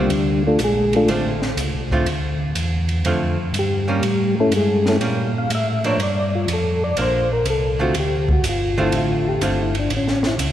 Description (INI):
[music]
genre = soul jazz organ trio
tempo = 122 BPM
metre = 4/4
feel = swing 68% on 8ths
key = D minor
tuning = A4 = 440 Hz
[part]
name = percussive tonewheel organ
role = melody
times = 0.0-10.4 s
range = G3 to F5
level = -21 LUFS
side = left 1 dB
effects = slow rotary speaker, chorus vibrato
[part]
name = archtop guitar, miked and amplified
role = accompaniment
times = 0.0-9.7 s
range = D3 to F4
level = -25 LUFS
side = right 2 dB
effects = none
[part]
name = mellow tonewheel organ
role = bass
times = 0.0-10.5 s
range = G1 to Bb2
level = -23 LUFS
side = equal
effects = chorus vibrato, slow rotary speaker
[part]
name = compact cocktail drum kit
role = drums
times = 0.1-10.5 s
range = hi-hat, kick drum, ride cymbal, snare drum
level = -26 LUFS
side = right 1 dB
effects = none
[sound]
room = wet cathedral reverb, RT60 4.3 s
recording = recorded in a church or concert hall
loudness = -17 LUFS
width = side -11 dB against mid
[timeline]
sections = 0.0-10.5 A section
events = tonewheel organ solo 0.0-10.5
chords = 0.1 Dm7; 4.0 A7b9; 6.0 Gm7; 8.0 Dm7; 9.9 A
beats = | 0.11 0.60 1.09 1.58 | 2.07 2.56 3.05 3.54 | 4.03 4.52 5.01 5.50 | 5.99 6.48 6.97 7.46 | 7.95 8.44 8.93 9.42 | 9.91 10.40